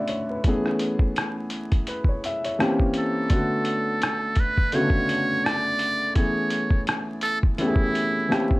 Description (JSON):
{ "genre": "lo-fi hip hop", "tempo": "84 BPM", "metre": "4/4", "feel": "swing 55% on 16ths", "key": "unclear", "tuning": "A4 = 440 Hz", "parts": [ { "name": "dark upright piano", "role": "accompaniment", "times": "0.0-8.6 s", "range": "C#3 to E5", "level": "-25 LUFS", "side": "left 1 dB", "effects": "none" }, { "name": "lo-fi sampler-style drum kit", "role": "drums", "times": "0.1-8.6 s", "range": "hi-hat, kick drum, rim click", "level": "-23 LUFS", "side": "equal", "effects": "none" }, { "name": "trumpet with metal mute", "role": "melody", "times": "3.0-8.6 s", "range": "E4 to D5", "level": "-26 LUFS", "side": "right 2 dB", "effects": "none" } ], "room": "moderate small room reverb, RT60 0.6 s", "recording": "vinyl crackle, faint mains hum", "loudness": "-21 LUFS", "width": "side -21 dB against mid", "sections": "0.0-8.6 A section", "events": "none", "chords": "0.4 Amaj9; 2.6 A#dim7; 3.3 Bm9; 6.2 Amaj9", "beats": "| 0.44 1.16 1.87 2.58 | 3.30 4.01 4.73 5.44 | 6.16 6.87 7.58 8.30" }